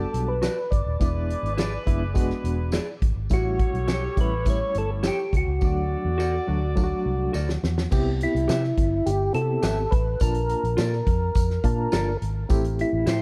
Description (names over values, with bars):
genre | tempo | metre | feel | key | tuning
uptempo 1960s-style soul | 104 BPM | 4/4 | straight | unclear | A4 = 440 Hz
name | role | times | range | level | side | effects
percussive tonewheel organ | melody | 0.0-13.2 s | E4 to D5 | -30 LUFS | equal | overdrive, chorus vibrato, slow rotary speaker, tape echo
warm horn section | second line | 0.0-7.6 s | G3 to D5 | -40 LUFS | equal | none
barky reed electric piano | accompaniment | 0.0-13.1 s | F#3 to A5 | -33 LUFS | equal | overdrive, tremolo
vintage muted fingered electric bass | bass | 0.0-13.2 s | Eb1 to C3 | -29 LUFS | equal | none
natural country drum kit | drums | 0.1-13.2 s | crash cymbal, hi-hat, kick drum, snare drum | -27 LUFS | equal | none
electric guitar through a small old amp | stabs | 0.4-13.2 s | E4 to E5 | -35 LUFS | equal | none
tambourine | percussion | 0.4-13.2 s | none | -48 LUFS | equal | none
room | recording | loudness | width
little or no reverb | dark, warm production | -24 LUFS | mono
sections
0.0-7.9 A section; 7.9-13.2 B section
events
drum fill 5.6-7.9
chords
0.0 Gmaj7; 1.0 E7; 3.3 A7; 5.6 D; 7.9 Cmaj7; 10.2 Bbmaj7; 12.5 Am7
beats
0.43 | 1.00 1.58 2.16 2.73 | 3.31 3.89 4.46 5.04 | 5.62 6.19 6.77 7.34 | 7.92 8.49 9.07 9.64 | 10.21 10.78 11.36 11.93 | 12.50 13.07